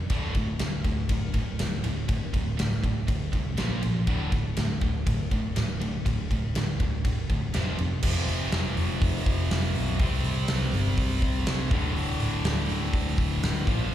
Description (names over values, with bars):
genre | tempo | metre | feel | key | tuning
hard rock | 122 BPM | 4/4 | straight | D minor | A4 = 437 Hz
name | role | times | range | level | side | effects
picked electric bass | bass | 0.0-13.9 s | D1 to D2 | -29 LUFS | equal | none
distorted electric guitar | riff | 0.1-13.9 s | D2 to C4 | -33 LUFS | left 8 dB | distortion, slapback echo
high-gain distorted guitar | riff | 0.1-13.9 s | D2 to C4 | -33 LUFS | right 9 dB | distortion, slapback echo
huge arena drum kit | drums | 0.1-13.9 s | crash cymbal, hi-hat, kick drum, ride cymbal, snare drum | -28 LUFS | equal | none
room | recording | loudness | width
studio ambience | live gig heard through the venue's PA, recital hall reverb | -24 LUFS | side -12 dB against mid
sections
0.0-8.0 A section; 8.0-13.9 B section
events
none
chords
0.1 D5; 3.6 Bb5; 4.1 D5; 7.5 F5; 10.0 C5; 11.7 D5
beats
| 0.11 0.61 1.10 1.60 | 2.10 2.59 3.09 3.58 | 4.08 4.58 5.07 5.57 | 6.06 6.56 7.05 7.54 | 8.04 8.53 9.02 9.51 | 10.00 10.49 10.98 11.47 | 11.96 12.45 12.94 13.43 | 13.92